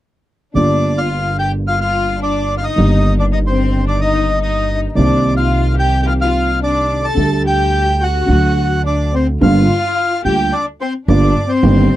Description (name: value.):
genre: tango.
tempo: 108 BPM.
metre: 4/4.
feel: rubato.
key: G minor.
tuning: A4 = 439 Hz.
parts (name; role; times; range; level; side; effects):
dark upright piano; accompaniment; 0.5-11.9 s; G1 to G4; -17 LUFS; right 1 dB; none.
bandoneon; melody; 0.6-12.0 s; C5 to A5; -19 LUFS; equal; none.
rich studio violin section; second line; 0.6-12.0 s; C4 to A4; -21 LUFS; left 4 dB; none.
upright bass; bass; 0.6-11.9 s; G1 to D2; -17 LUFS; right 1 dB; none.
room: light reverb.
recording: dry, close 1970s-style studio recording.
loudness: -13 LUFS.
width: side -14 dB against mid.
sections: 0.6-9.4 A section; 9.4-12.0 B section.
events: none.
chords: 0.6 Gm7; 2.8 Eb/G; 5.0 Cm7; 7.2 Dsus4; 8.3 D; 9.4 Gm7.